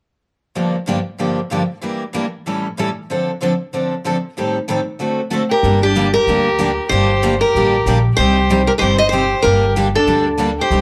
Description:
acoustic string swing (jazz manouche); 189 BPM; 4/4; swing 60% on 8ths; G minor; A4 = 441 Hz
picked steel-string acoustic guitar; accompaniment; 0.6-10.8 s; G2 to A4; -23 LUFS; equal
picked steel-string acoustic guitar; accompaniment; 0.6-10.8 s; G2 to Bb4; -27 LUFS; equal
picked steel-string acoustic guitar; melody; 5.5-10.8 s; G4 to Eb5; -19 LUFS; equal
warm violin; second line; 5.5-10.8 s; D4 to C5; -22 LUFS; equal
upright bass; bass; 5.6-10.8 s; G1 to D2; -20 LUFS; equal
moderate club reverb, RT60 0.7 s; lossy compression artefacts; -17 LUFS; mono
0.5-5.6 A section; 5.6-10.8 B section
0.5 Gm7; 1.8 Em7b5; 2.5 A7; 3.1 Dm7; 4.4 Am7b5; 5.0 D7; 5.6 Gm; 8.2 Cm; 9.4 Gm

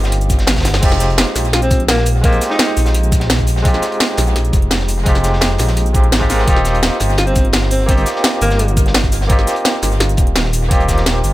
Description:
liquid drum and bass; 170 BPM; 4/4; straight; Eb major; A4 = 445 Hz
barky tine electric piano; accompaniment; 0.0-11.3 s; Ab3 to Bb4; -20 LUFS; equal; fast tremolo, tape echo
dark detuned saw bass; bass; 0.0-11.3 s; Eb1 to Bb1; -16 LUFS; equal
crunchy breakbeat drum kit; drums; 0.0-11.3 s; hi-hat, snare drum; -24 LUFS; equal; high-pass filter on hats, high-pass filter on snare, high-pass filter on room, dub echo
drum and bass drum kit; drums; 0.0-11.3 s; cabasa, crash cymbal, hi-hat, snare drum; -18 LUFS; equal
electronic kick drum; drums; 0.3-11.0 s; -15 LUFS; equal
breathy alto saxophone; melody; 1.5-2.9, 7.2-8.8 s; Bb3 to F4; -21 LUFS; equal; analog delay
light reverb, small room ambience; echo-heavy mix; -12 LUFS; side -16 dB against mid
0.0-11.3 A section
0.0 Eb6; 0.8 Fm9; 6.5 Eb6

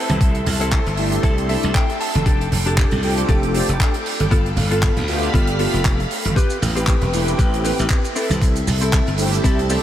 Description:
nu-disco, nu disco; 117 BPM; 4/4; swing 56% on 16ths; A4 = 440 Hz
string machine, full ensemble; sustained chords; 0.0-9.8 s; A4 to D6; -26 LUFS; equal; phaser, ensemble chorus, sidechain pumping
direct-recorded clean electric guitar; riff; 0.0-9.8 s; B3 to A5; -26 LUFS; left 3 dB; lush chorus, tape echo
glassy slap bass; bass; 0.1-9.8 s; E1 to D2; -21 LUFS; equal; tube saturation
damped 70s drum kit; drums; 0.1-9.8 s; handclaps, hi-hat, shaker; -26 LUFS; right 2 dB; small room ambience
congas; percussion; 0.1-8.8 s; -26 LUFS; right 2 dB
electronic kick drum; drums; 0.2-9.6 s; -17 LUFS; equal; small room ambience
mellow synth brass; accompaniment; 1.0-9.8 s; A3 to B4; -26 LUFS; right 1 dB; chorus, sidechain pumping, tape echo
light reverb, small room ambience; -16 LUFS; side -11 dB against mid
0.0-9.8 A section
clean electric guitar fill 1.2-2.3, 9.4-9.8
0.0 C6; 2.3 F69; 4.3 G9; 6.4 Am9; 8.2 C6

